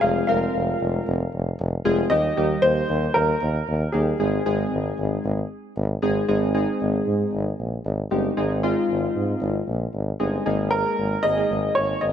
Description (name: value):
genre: synth-pop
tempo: 115 BPM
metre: 4/4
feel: straight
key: Ab major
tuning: A4 = 436 Hz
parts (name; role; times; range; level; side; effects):
- warm baby grand piano; melody; 0.0-5.7, 10.7-12.1 s; Ab4 to F5; -23 LUFS; equal; tape echo
- warm analog keys; accompaniment; 0.0-12.1 s; G3 to Bb4; -25 LUFS; left 1 dB; chorus
- clear tuba; bass; 0.0-12.1 s; F1 to Ab2; -24 LUFS; equal; none
room: moderate lush hall reverb, RT60 2.5 s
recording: none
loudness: -20 LUFS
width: side -9 dB against mid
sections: 0.0-6.3 A section; 6.3-10.5 B section; 10.5-12.1 C section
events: none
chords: 0.0 Fm; 2.1 Eb; 4.2 Ab; 10.5 Absus2